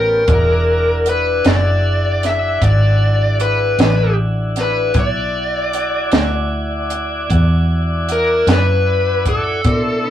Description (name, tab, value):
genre	slow blues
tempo	51 BPM (dotted quarters)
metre	12/8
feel	straight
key	E mixolydian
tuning	A4 = 440 Hz
part	dark smooth lead guitar	melody	0.0-10.1 s	A4 to E5	-18 LUFS	left 2 dB	overdrive
part	tonewheel organ	sustained chords	0.0-10.1 s	C#3 to G#5	-23 LUFS	equal	slow rotary speaker
part	vintage muted fingered electric bass	bass	0.0-10.1 s	E1 to B2	-17 LUFS	equal	none
part	compact cocktail drum kit	drums	0.3-9.8 s	hi-hat, kick drum, snare drum	-18 LUFS	right 1 dB	none
room	moderate booth ambience, RT60 0.2 s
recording	rough rehearsal-room recording, warm saturation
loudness	-13 LUFS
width	side -11 dB against mid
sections	0.0-10.1 A section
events	none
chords	0.3 E9